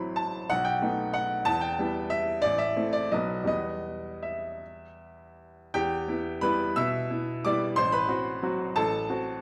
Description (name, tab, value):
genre	classical, piano waltz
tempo	154-194 BPM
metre	3/4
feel	rubato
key	E minor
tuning	A4 = 440 Hz
part	bright baby grand piano	solo	0.0-9.4 s	A1 to E6	-29 LUFS	equal	none
room	wet recital hall reverb, RT60 1.4 s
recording	none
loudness	-28 LUFS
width	mono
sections	0.0-5.7 A section; 5.7-9.4 B section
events	none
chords	0.0 F#m7b5/A; 0.5 B7; 1.5 Em; 2.4 Am; 3.1 B; 3.5 Em; 7.8 F#dim/A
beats	0.19 | 0.51 0.82 1.15 | 1.46 1.78 2.11 | 2.43 2.76 3.11 | 3.47 3.84 4.22 | 4.60 4.98 5.36 | 5.73 6.06 6.41 | 6.76 7.10 7.43 | 7.77 8.10 8.44 | 8.78 9.10